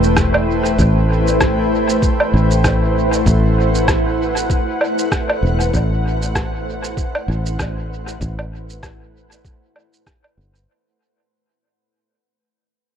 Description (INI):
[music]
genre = ambient dub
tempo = 97 BPM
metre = 4/4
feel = swing 57% on 16ths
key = A dorian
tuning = A4 = 440 Hz
[part]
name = granular cloud pad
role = sustained chords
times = 0.0-10.7 s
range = A3 to G5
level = -19 LUFS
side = equal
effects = built-in reverb
[part]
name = fingered electric bass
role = bass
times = 0.0-10.7 s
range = E1 to A1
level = -18 LUFS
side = equal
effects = none
[part]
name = electronic shaker, rim click and woodblock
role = drums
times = 0.0-10.7 s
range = none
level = -22 LUFS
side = right 1 dB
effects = dub echo
[part]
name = electronic kick drum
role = drums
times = 0.2-10.2 s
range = none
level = -21 LUFS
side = equal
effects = none
[sound]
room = light reverb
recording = echo-heavy mix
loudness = -15 LUFS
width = side -8 dB against mid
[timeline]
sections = 0.0-10.7 A section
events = fade-out 4.1-10.7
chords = 0.0 Am7